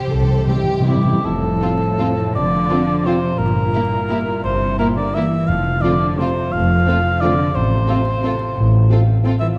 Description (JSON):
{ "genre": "classical", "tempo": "148-191 BPM", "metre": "3/4", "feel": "rubato", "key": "F major", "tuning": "A4 = 440 Hz", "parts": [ { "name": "warm symphonic violin section", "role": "melody", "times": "0.0-9.3 s", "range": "G4 to C5", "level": "-39 LUFS", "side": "equal", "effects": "none" }, { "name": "warm symphonic violin section", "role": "second line", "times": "0.0-9.3 s", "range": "E4 to A4", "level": "-31 LUFS", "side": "equal", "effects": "none" }, { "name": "concert harp", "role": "arpeggios", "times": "0.0-9.6 s", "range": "F2 to C5", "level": "-25 LUFS", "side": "equal", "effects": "none" }, { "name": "rich symphonic cello section", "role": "bass", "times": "0.0-9.5 s", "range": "G2 to G4", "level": "-26 LUFS", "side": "equal", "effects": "none" }, { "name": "timpani", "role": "percussion", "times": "0.0-1.2, 5.5-6.0 s", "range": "F2 to C3", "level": "-23 LUFS", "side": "equal", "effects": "none" }, { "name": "rich studio double bass section", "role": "bass", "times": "0.1-8.8 s", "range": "F1 to C2", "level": "-23 LUFS", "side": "equal", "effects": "none" }, { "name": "warm symphonic viola section", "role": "accompaniment", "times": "0.5-9.3 s", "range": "G3 to C4", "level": "-29 LUFS", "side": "equal", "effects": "none" }, { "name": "warm cor anglais", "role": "second line", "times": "0.9-9.5 s", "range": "G4 to F5", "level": "-24 LUFS", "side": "equal", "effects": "none" }, { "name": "dark French horn section", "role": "sustained chords", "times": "1.6-9.4 s", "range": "A3 to F4", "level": "-30 LUFS", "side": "equal", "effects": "none" } ], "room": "moderate scoring stage reverb, RT60 1.4 s", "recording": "vinyl crackle", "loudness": "-17 LUFS", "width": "mono", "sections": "0.0-1.3 A section; 1.3-9.6 B section", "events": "timpani fill 0.0-1.3", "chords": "0.0 C; 1.3 F; 3.4 Edim/G; 5.5 F; 7.6 F/A" }